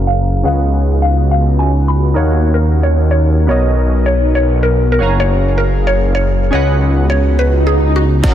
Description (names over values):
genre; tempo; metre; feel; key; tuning
future bass; 158 BPM; 4/4; swing 54% on 16ths, half-time; unclear; A4 = 440 Hz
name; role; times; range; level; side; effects
glassy digital keys; accompaniment; 0.0-8.3 s; B3 to A#5; -22 LUFS; right 2 dB; chorus, sidechain pumping, tape echo
airy breathy pad; sustained chords; 0.0-8.3 s; D#2 to E#5; -22 LUFS; equal; chorus, sidechain pumping
wide detuned saw bass; bass; 0.0-8.2 s; F#1 to D#2; -12 LUFS; equal; chorus, sidechain pumping
mallet-like synth pluck; melody; 0.1-8.2 s; F#4 to B5; -18 LUFS; equal; lush chorus, sidechain pumping, digital delay
swell; sound effects; 7.6-8.2 s; none; -18 LUFS; equal; none
dense compressed supersaw; riff; 8.2-8.3 s; C#4 to A#5; -17 LUFS; right 2 dB; sidechain pumping, low-pass filter
big-room dance drum kit; drums; 8.2-8.3 s; hi-hat, snare drum; -23 LUFS; right 1 dB; high-pass filter on cymbals, low-pass filter on cymbals, high-pass filter on snare, low-pass filter on snare, high-pass filter on hats, low-pass filter on hats
electronic kick drum; drums; 8.2-8.3 s; none; -10 LUFS; equal; none
room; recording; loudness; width
digital ambience; low-pass filter; -11 LUFS; side -10 dB against mid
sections
0.0-8.2 A section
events
filter sweep 0.0-8.2; swell 7.6-8.2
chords
0.5 C#9sus4; 2.2 D#m7; 3.5 Bmaj9; 5.0 F#maj9; 6.5 C#9sus4